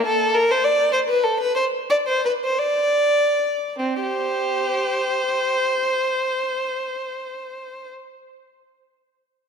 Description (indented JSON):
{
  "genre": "classical, baroque-style suite movement for unaccompanied violin",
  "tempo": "48-71 BPM (dotted quarters)",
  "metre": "6/8",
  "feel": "rubato",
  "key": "unclear",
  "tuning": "A4 = 439 Hz",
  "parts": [
    { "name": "warm violin", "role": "solo", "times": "0.0-7.9 s", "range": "C4 to D5", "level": "-19 LUFS", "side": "equal", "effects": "none" }
  ],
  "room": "wet concert hall reverb, RT60 2.3 s",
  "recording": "none",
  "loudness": "-19 LUFS",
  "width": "side -6 dB against mid",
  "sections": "0.0-3.8 A section; 3.8-8.6 B section",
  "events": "slowing down 0.0-3.8",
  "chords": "none"
}